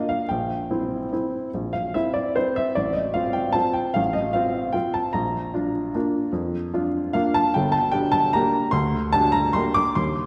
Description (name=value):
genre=classical, piano waltz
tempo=149 BPM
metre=3/4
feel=rubato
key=unclear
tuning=A4 = 438 Hz
part: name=warm upright piano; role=solo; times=0.0-10.3 s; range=G1 to D6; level=-23 LUFS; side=equal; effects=none
room=wet scoring stage reverb, RT60 1.8 s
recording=recorded in a church or concert hall, vinyl crackle, nothing above 10.5 kHz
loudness=-23 LUFS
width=mono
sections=0.0-10.3 A section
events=none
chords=0.3 C7/Bb; 2.7 F/A; 5.1 Bb; 7.5 Gm